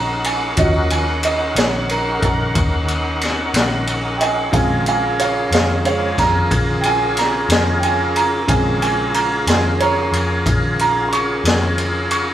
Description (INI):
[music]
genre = slow blues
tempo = 61 BPM (dotted quarters)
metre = 12/8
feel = straight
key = Bb minor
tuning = A4 = 443 Hz
[part]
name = warm baby grand piano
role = accompaniment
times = 0.0-12.3 s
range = Db3 to Db6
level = -20 LUFS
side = right 3 dB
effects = none
[part]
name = tonewheel organ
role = sustained chords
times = 0.0-12.3 s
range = Db3 to Gb5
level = -22 LUFS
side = equal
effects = overdrive, chorus vibrato, slow rotary speaker
[part]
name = vintage muted picked electric bass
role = bass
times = 0.0-12.3 s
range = Bb1 to F2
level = -23 LUFS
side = left 1 dB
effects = none
[part]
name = raw garage drum kit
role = drums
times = 0.2-12.3 s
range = kick drum, ride cymbal, snare drum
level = -20 LUFS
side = left 1 dB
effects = none
[sound]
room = moderate large studio reverb, RT60 1.3 s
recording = band playing live in one room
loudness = -15 LUFS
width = side -11 dB against mid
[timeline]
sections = 0.0-12.3 A section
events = grand piano solo 0.0-12.3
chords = 0.0 Ebm7; 4.5 Bbm7